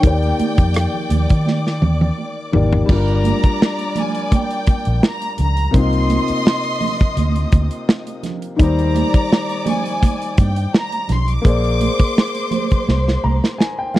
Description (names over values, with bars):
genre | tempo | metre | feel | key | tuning
lush 1970s-style soul | 84 BPM | 4/4 | swing 54% on 16ths | Eb major | A4 = 440 Hz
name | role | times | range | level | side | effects
rich studio violin section | melody | 0.0-13.6 s | G5 to D6 | -25 LUFS | equal | tape echo
dark studio string section | second line | 0.0-13.9 s | C5 to Eb6 | -28 LUFS | left 1 dB | none
warm grand piano | accompaniment | 0.0-14.0 s | C3 to Bb5 | -23 LUFS | left 3 dB | none
vintage muted fingered electric bass | bass | 0.0-13.4 s | G1 to Eb3 | -18 LUFS | equal | none
modern studio drum kit | drums | 0.0-14.0 s | crash cymbal, hi-hat, kick drum, rim click, snare drum, toms | -15 LUFS | equal | none
congas | percussion | 0.0-14.0 s | none | -26 LUFS | right 6 dB | none
room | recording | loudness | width
studio reverb | dry, close 1970s-style studio recording | -15 LUFS | side -15 dB against mid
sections
0.0-2.9 A section; 2.9-14.0 B section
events
drum fill 1.5-2.9, 12.9-14.0; grand piano fill 12.9-14.0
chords
0.0 Ebmaj7; 2.9 Gm7; 5.7 Cm11; 8.6 Eb6; 11.4 Bb9